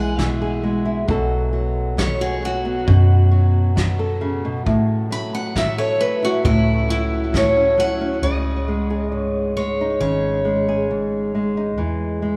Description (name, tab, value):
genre	acoustic folk duo or small band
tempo	67 BPM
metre	4/4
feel	straight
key	C# minor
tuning	A4 = 440 Hz
part	picked steel-string acoustic guitar	melody	0.0-11.3 s	E4 to B5	-25 LUFS	equal	tape echo
part	nylon-string guitar	accompaniment	0.0-12.4 s	G#2 to A4	-24 LUFS	equal	none
part	hollow-body short-scale fingered electric bass	bass	0.0-12.4 s	G#1 to F#2	-23 LUFS	equal	none
part	soft brush drum kit	drums	0.2-7.5 s	kick drum, snare drum	-28 LUFS	equal	none
room	moderate cathedral reverb, RT60 5.4 s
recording	in a vast, echoing space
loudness	-20 LUFS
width	mono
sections	0.0-8.2 A section; 8.2-12.4 B section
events	steel-string acoustic guitar solo 0.0-8.2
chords	0.0 E; 1.1 B5; 4.7 F#m7/A; 8.2 C#sus2; 11.8 E